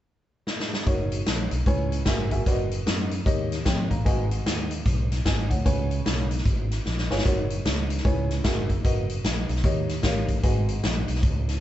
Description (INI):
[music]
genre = uptempo gospel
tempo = 150 BPM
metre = 4/4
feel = swing 62% on 8ths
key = F# major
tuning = A4 = 441 Hz
[part]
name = swinging big-band drum kit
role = drums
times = 0.5-11.6 s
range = hi-hat, kick drum, snare drum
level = -25 LUFS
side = equal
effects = none
[part]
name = dark upright piano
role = accompaniment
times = 0.9-11.0 s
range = G#2 to A#5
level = -30 LUFS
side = equal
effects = none
[part]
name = modern bright fingered electric bass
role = bass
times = 0.9-11.6 s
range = F#1 to F#2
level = -28 LUFS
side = equal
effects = none
[sound]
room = moderate studio ambience, RT60 0.5 s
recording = band playing live in one room, nothing above 7.9 kHz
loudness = -22 LUFS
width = side -13 dB against mid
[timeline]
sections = 0.9-7.3 A section; 7.3-11.6 B section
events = drum fill 0.5-0.9, 6.9-7.3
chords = 0.0 N.C.; 0.9 F#6; 1.7 C#m7; 2.1 F#9; 2.5 Bmaj7/F#; 3.3 D#7; 4.1 G#m7; 5.7 C#7; 7.3 F#6; 8.1 C#m7; 8.4 F#9; 8.8 Bmaj7/F#; 9.6 D#7; 10.4 G#m7